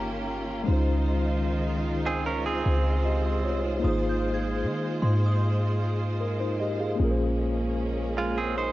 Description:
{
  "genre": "contemporary R&B",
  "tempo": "76 BPM",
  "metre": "4/4",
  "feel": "straight",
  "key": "Ab major",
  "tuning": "A4 = 439 Hz",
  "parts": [
    { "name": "mellow tine electric piano", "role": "accompaniment", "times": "0.0-8.7 s", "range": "Ab3 to F5", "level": "-30 LUFS", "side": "left 1 dB", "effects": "medium stereo tremolo" },
    { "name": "warm studio string section", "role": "sustained chords", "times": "0.0-8.7 s", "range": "Eb3 to C5", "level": "-32 LUFS", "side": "right 1 dB", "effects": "none" },
    { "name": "warm 808-style bass", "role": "bass", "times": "0.0-8.7 s", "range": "G1 to Eb3", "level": "-27 LUFS", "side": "equal", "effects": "none" },
    { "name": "synth chime", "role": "texture", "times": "0.0-7.3 s", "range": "Bb5 to Ab6", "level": "-40 LUFS", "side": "equal", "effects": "ensemble chorus, analog delay, plate reverb" },
    { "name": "direct-recorded clean electric guitar", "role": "arpeggios", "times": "2.1-8.7 s", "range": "Ab3 to C5", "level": "-29 LUFS", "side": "right 4 dB", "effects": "spring reverb, plate reverb" }
  ],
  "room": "light reverb",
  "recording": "home recording on cassette, nothing above 7.6 kHz",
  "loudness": "-24 LUFS",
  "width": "side -16 dB against mid",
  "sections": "0.0-8.7 A section",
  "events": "none",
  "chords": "0.0 Eb7; 0.7 Dbmaj9; 3.8 Ab69; 7.0 Bbm9",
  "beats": "| 0.68 1.47 2.26 3.05 | 3.84 4.63 5.42 6.21 | 7.00 7.79 8.57"
}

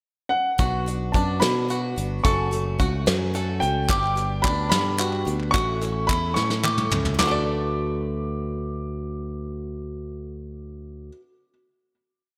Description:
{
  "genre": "indie folk with a building arrangement",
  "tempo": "73 BPM (dotted quarters)",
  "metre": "6/8",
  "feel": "straight",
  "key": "D major",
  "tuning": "A4 = 442 Hz",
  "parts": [
    { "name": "warm upright piano", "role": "melody", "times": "0.3-11.1 s", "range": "F#5 to D6", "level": "-30 LUFS", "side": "equal", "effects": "slapback echo, analog delay" },
    { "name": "picked acoustic archtop guitar", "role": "accompaniment", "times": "0.6-11.2 s", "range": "F#2 to B4", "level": "-34 LUFS", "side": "equal", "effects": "slapback echo" },
    { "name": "bluegrass banjo", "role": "arpeggios", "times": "0.6-11.2 s", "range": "D4 to D5", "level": "-32 LUFS", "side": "equal", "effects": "slapback echo" },
    { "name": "fingered electric bass", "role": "bass", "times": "0.6-11.1 s", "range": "F#1 to B2", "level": "-30 LUFS", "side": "equal", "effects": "none" },
    { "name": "soft brush drum kit", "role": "drums", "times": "0.6-7.3 s", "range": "hi-hat, kick drum, snare drum, toms", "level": "-27 LUFS", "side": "equal", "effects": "none" },
    { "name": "group handclap", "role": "percussion", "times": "3.9-7.5 s", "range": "none", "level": "-33 LUFS", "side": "equal", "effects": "none" }
  ],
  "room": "moderate lush hall reverb, RT60 1.6 s, small room ambience",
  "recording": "big arena sound",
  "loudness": "-24 LUFS",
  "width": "mono",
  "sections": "0.0-0.6 pickup bar; 0.6-7.2 pre-chorus; 7.2-10.5 final chord",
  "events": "drum fill 6.4-7.2",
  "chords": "0.0 N.C.; 0.6 Bm; 2.2 F#m; 3.9 G; 5.5 A; 7.2 D6",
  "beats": "| 0.59 1.42 | 2.25 3.07 | 3.90 4.72 | 5.55 6.37 | 7.19 8.02 | 8.84 9.67"
}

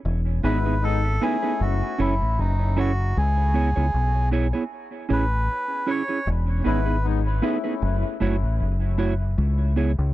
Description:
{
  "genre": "reggae",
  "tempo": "77 BPM",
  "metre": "4/4",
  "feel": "swing 55% on 16ths",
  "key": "E major",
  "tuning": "A4 = 440 Hz",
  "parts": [
    { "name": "deep dub fingered electric bass", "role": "bass", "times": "0.1-10.1 s", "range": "E1 to C#2", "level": "-22 LUFS", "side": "left 1 dB", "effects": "none" },
    { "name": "melodica", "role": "melody", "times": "0.4-7.1 s", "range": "D#4 to C#5", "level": "-29 LUFS", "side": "right 1 dB", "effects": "dub echo" },
    { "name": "clear trombone section", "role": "second line", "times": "0.4-2.0, 6.6-8.2 s", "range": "G#3 to E4", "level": "-32 LUFS", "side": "left 11 dB", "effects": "dub echo" },
    { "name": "mellow electric guitar", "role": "accompaniment", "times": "0.4-9.9 s", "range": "A3 to C#5", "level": "-28 LUFS", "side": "right 5 dB", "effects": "dub echo" }
  ],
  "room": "little or no reverb",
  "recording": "dry, close 1970s-style studio recording",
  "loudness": "-20 LUFS",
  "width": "side -15 dB against mid",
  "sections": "0.0-10.1 A section",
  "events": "none",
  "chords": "0.0 Emaj7; 1.6 F#m7; 3.2 C#m7; 4.7 Amaj7; 6.3 Emaj7; 7.8 F#m7; 9.4 C#m7",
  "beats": "| 0.05 0.83 1.60 2.38 | 3.16 3.94 4.71 5.49 | 6.27 7.04 7.82 8.60 | 9.38"
}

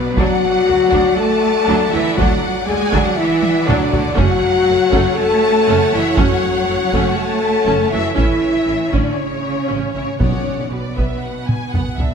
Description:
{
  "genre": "cinematic, epic orchestral film score",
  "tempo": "120 BPM",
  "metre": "4/4",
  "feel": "straight",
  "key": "unclear",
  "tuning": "A4 = 440 Hz",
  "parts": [
    { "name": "warm symphonic violin section", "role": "melody", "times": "0.0-12.0 s", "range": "B4 to A5", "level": "-23 LUFS", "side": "left 4 dB", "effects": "none" },
    { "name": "rich studio violin section", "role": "second line", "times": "0.0-12.1 s", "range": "C#5 to G#5", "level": "-26 LUFS", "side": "left 2 dB", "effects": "none" },
    { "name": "mellow French horn section", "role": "sustained chords", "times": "0.0-12.0 s", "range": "B3 to A4", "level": "-18 LUFS", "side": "left 3 dB", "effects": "none" },
    { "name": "rich symphonic cello section", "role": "bass", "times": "0.0-12.0 s", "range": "B2 to A3", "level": "-23 LUFS", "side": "right 5 dB", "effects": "none" },
    { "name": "rich symphonic viola section", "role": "accompaniment", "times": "0.2-12.1 s", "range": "F#3 to A4", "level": "-24 LUFS", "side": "right 2 dB", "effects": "none" },
    { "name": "rich symphonic double bass section", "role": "bass", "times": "0.2-12.1 s", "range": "F#1 to D2", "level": "-23 LUFS", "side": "right 5 dB", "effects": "none" },
    { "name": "taiko ensemble", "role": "drums", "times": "0.2-12.1 s", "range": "none", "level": "-21 LUFS", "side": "equal", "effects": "none" },
    { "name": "timpani", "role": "percussion", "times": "10.2-10.9 s", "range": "B2", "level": "-25 LUFS", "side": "right 1 dB", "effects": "none" }
  ],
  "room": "moderate concert hall reverb, RT60 2.2 s",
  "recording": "none",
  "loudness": "-14 LUFS",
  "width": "side -6 dB against mid",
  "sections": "0.0-12.1 A section",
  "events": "drum fill 3.4-4.2, 11.5-12.1",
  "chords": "0.2 D; 4.2 F#m; 8.2 A; 10.2 Bm",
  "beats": "| 0.17 0.67 1.18 1.68 | 2.18 2.68 3.18 3.68 | 4.18 4.68 5.18 5.68 | 6.18 6.68 7.18 7.67 | 8.18 8.68 9.18 9.69 | 10.20 10.71 11.22 11.73"
}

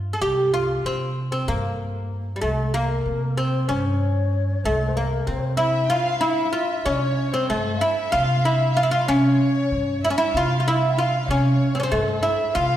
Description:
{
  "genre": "turkish",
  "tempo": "190 BPM (eighths)",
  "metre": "7/8",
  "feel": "straight",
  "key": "C makam hicaz",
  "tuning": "A4 = 439 Hz",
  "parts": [
    { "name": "upright bass", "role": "bass", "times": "0.0-12.8 s", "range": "C2 to C3", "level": "-24 LUFS", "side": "equal", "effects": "none" },
    { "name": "oud", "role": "melody", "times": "0.1-12.8 s", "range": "G3 to A4-40c", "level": "-22 LUFS", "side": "equal", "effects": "none" },
    { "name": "breathy reedy low ney", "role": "second line", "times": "2.4-12.8 s", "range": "A4-41c to G5", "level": "-29 LUFS", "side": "left 4 dB", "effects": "none" },
    { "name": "warm studio violin section", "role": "second line", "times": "5.6-12.8 s", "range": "A4-40c to G5", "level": "-30 LUFS", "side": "left 1 dB", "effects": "none" }
  ],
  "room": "wet concert hall reverb, RT60 2.0 s",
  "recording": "recorded in a church or concert hall",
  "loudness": "-19 LUFS",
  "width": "side -12 dB against mid",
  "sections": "0.0-6.9 A section; 6.9-12.8 B section",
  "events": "none",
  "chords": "none",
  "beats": "| 0.22 0.53 0.85 1.17 1.48 1.80 2.12 | 2.43 2.75 3.06 3.38 3.70 4.01 4.33 | 4.65 4.96 5.28 5.59 5.91 6.23 6.54 | 6.86 7.18 7.49 7.81 8.12 8.44 8.76 | 9.07 9.39 9.71 10.02 10.34 10.65 10.97 | 11.29 11.60 11.92 12.23 12.55"
}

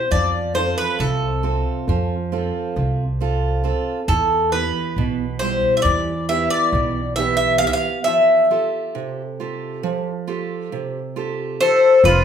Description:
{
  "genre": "greek folk, Greek bouzouki band",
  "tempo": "136 BPM (eighths)",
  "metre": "9/8",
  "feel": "straight",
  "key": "unclear",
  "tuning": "A4 = 441 Hz",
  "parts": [
    { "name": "Greek bouzouki", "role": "melody", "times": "0.0-12.2 s", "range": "A4 to F5", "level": "-17 LUFS", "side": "left 2 dB", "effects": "none" },
    { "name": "picked steel-string acoustic guitar", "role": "accompaniment", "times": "0.0-12.2 s", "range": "B2 to A4", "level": "-25 LUFS", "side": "right 5 dB", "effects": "none" },
    { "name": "upright bass", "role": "bass", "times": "0.1-12.2 s", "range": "F1 to F2", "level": "-23 LUFS", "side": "equal", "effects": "none" },
    { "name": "accordion", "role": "second line", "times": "11.6-12.2 s", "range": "F4 to A4", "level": "-21 LUFS", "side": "right 3 dB", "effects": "light tremolo tuning" }
  ],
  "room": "wet large studio reverb, RT60 0.8 s",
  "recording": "band playing live in one room",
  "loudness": "-17 LUFS",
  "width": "side -8 dB against mid",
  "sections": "0.0-12.0 A section",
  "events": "none",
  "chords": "0.1 F; 4.1 Em; 8.1 Fadd9",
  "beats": "| 0.12 0.56 1.00 1.44 1.88 2.32 2.76 3.20 3.64 | 4.08 4.52 4.96 5.40 5.85 6.29 6.73 7.17 7.61 | 8.06 8.50 8.94 9.38 9.82 10.27 10.71 11.15 11.60 | 12.04"
}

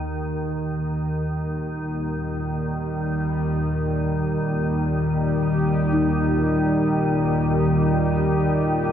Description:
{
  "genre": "dark ambient drone",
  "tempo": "free time",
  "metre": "none",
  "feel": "none",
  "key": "Eb major",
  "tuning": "A4 = 438 Hz",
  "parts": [
    { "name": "organ-like drone", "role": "drone", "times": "0.0-8.9 s", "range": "Eb2 to Eb3", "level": "-22 LUFS", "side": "equal", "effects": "ensemble chorus, built-in reverb" },
    { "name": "sweeping resonant pad", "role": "sustained chords", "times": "0.1-8.9 s", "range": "Bb2 to G4", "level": "-27 LUFS", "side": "right 1 dB", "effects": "chorus" },
    { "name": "gamelan-type bronze metallophone", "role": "arpeggios", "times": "5.9-8.9 s", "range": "Eb4", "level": "-26 LUFS", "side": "left 3 dB", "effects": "analog delay" }
  ],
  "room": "moderate lush hall reverb, RT60 2.5 s",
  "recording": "dreamy mix soaked in reverb",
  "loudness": "-20 LUFS",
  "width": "side -9 dB against mid",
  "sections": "0.0-8.9 A section",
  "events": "fade-in on analog synth pad 0.0-8.9",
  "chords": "0.0 Eb",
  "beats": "free time"
}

